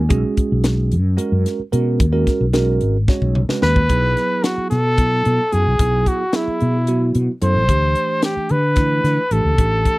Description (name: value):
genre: electric jazz fusion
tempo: 222 BPM (eighths)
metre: 7/8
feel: straight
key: B major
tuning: A4 = 440 Hz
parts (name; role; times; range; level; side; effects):
- bell-like tine electric piano; accompaniment; 0.0-10.0 s; E3 to C#5; -22 LUFS; right 3 dB; phaser
- mellow fretless electric bass; bass; 0.0-9.8 s; G#1 to D3; -18 LUFS; equal; none
- crisp fusion drum kit; drums; 0.1-10.0 s; hi-hat, kick drum, snare drum, toms; -19 LUFS; left 1 dB; none
- breathy trumpet; melody; 3.6-10.0 s; E4 to C5; -19 LUFS; equal; slapback echo
room: little or no reverb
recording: dry, close 1970s-style studio recording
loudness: -15 LUFS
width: side -20 dB against mid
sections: 0.0-3.9 A section; 3.9-10.0 B section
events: drum fill 3.1-3.9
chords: 0.0 B6; 3.9 B7sus4; 7.7 A9sus4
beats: | 0.11 0.38 0.65 0.92 1.19 1.46 1.73 | 2.00 2.27 2.54 2.81 3.08 3.35 3.62 | 3.89 4.16 4.43 4.71 4.98 5.25 5.52 | 5.79 6.06 6.33 6.60 6.87 7.14 7.42 | 7.69 7.96 8.23 8.50 8.77 9.04 9.31 | 9.58 9.86